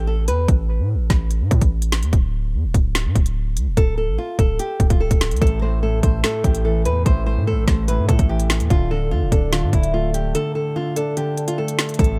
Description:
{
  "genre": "hip hop, drill",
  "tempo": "146 BPM",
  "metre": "4/4",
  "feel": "half-time",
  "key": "unclear",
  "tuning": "A4 = 439 Hz",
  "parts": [
    { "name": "nylon-string guitar", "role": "melody", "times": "0.0-0.5, 3.8-12.2 s", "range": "E4 to C5", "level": "-27 LUFS", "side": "equal", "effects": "analog delay" },
    { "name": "hard-hitting 808-style bass", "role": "bass", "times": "0.0-12.2 s", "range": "D1 to A2", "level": "-23 LUFS", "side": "equal", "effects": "none" },
    { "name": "drill drum kit", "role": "drums", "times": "0.3-12.1 s", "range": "hi-hat, kick drum, snare drum", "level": "-20 LUFS", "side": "equal", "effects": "none" },
    { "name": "felt-muted upright piano", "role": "accompaniment", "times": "5.4-12.2 s", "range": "A2 to D4", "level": "-27 LUFS", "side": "equal", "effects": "analog delay" },
    { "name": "warm analog pad", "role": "sustained chords", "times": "12.0-12.2 s", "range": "none", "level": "barely audible", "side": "none", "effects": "none" }
  ],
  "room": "digital ambience",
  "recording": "echo-heavy mix",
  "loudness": "-19 LUFS",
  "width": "mono",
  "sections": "0.0-12.0 A section",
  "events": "break 0.0-5.4, 10.3-12.0",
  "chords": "0.0 A5; 2.1 D5; 5.4 A5; 8.7 Dm",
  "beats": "0.07 | 0.48 0.90 1.31 1.72 | 2.13 2.54 2.95 3.36 | 3.77 4.18 4.59 5.00 | 5.42 5.83 6.24 6.65 | 7.06 7.47 7.88 8.29 | 8.70 9.12 9.53 9.94 | 10.35 10.76 11.17 11.58 | 11.99"
}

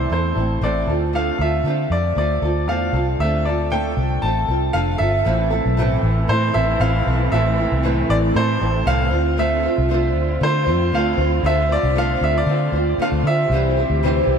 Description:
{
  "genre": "acoustic pop",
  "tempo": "116 BPM",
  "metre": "4/4",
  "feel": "swing 55% on 16ths",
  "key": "A minor",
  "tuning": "A4 = 440 Hz",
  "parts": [
    { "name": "bright upright piano", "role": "melody", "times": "0.0-14.4 s", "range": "C5 to A5", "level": "-22 LUFS", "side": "right 1 dB", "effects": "analog delay" },
    { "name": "nylon-string guitar", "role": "accompaniment", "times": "0.0-14.4 s", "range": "A2 to C5", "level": "-22 LUFS", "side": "equal", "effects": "double-tracked left and right" },
    { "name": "vintage muted fingered electric bass", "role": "bass", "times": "0.0-14.4 s", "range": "F1 to D3", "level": "-20 LUFS", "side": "equal", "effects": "none" },
    { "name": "dark studio string section", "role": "sustained chords", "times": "5.2-14.4 s", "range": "D3 to G4", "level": "-28 LUFS", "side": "right 1 dB", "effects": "none" }
  ],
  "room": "moderate lush hall reverb, RT60 2.8 s",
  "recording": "dreamy mix soaked in reverb",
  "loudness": "-16 LUFS",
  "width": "side -7 dB against mid",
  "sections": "0.0-5.3 A section; 5.3-14.4 B section",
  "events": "none",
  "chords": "0.0 Am; 0.9 Dm7; 5.3 Am; 9.1 Dm7; 13.5 C",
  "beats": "0.10 0.62 | 1.14 1.65 2.17 2.68 | 3.20 3.71 4.23 4.75 | 5.26 5.78 6.29 6.81 | 7.32 7.84 8.35 8.87 | 9.38 9.90 10.41 10.93 | 11.44 11.96 12.47 12.99 | 13.50 14.02"
}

